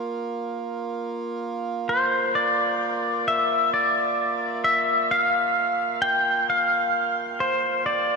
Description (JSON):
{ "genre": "ambient", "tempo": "65 BPM", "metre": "3/4", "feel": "straight", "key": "Bb lydian", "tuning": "A4 = 442 Hz", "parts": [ { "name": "hand-pumped harmonium", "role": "drone", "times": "0.0-8.2 s", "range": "Bb3 to F4", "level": "-30 LUFS", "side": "right 4 dB", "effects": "none" }, { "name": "pedal steel guitar", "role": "melody", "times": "1.9-8.2 s", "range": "C5 to G5", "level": "-20 LUFS", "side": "left 1 dB", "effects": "shimmer reverb, diffuse ambient delay" } ], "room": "wet cathedral reverb, RT60 5.2 s", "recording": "in a vast, echoing space", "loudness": "-21 LUFS", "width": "side -4 dB against mid", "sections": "0.0-8.2 A section", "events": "fade-out on harmonium 0.0-8.2", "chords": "0.0 Bb5", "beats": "0.01 0.95 | 1.88 2.81 3.73 | 4.65 5.56 6.47 | 7.38" }